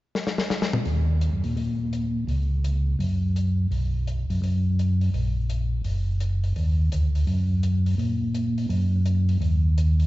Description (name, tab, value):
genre	soul jazz organ trio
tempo	168 BPM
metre	4/4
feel	swing 64% on 8ths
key	Eb minor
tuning	A4 = 441 Hz
part	warm soul drum kit	drums	0.1-10.1 s	hi-hat, snare drum, toms	-31 LUFS	left 2 dB	none
part	mellow tonewheel organ	bass	0.9-10.1 s	Gb1 to Bb2	-21 LUFS	equal	chorus vibrato, slow rotary speaker
room	wet church reverb, RT60 3.2 s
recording	recorded in a church or concert hall, nothing above 7.7 kHz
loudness	-22 LUFS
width	side -17 dB against mid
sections	0.9-6.6 A section; 6.6-10.1 B section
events	drum fill 0.1-0.9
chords	none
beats	0.14 0.50 | 0.86 1.22 1.57 1.93 | 2.29 2.64 3.00 3.36 | 3.71 4.07 4.43 4.78 | 5.14 5.50 5.85 6.21 | 6.57 6.92 7.28 7.63 | 7.99 8.35 8.70 9.06 | 9.42 9.77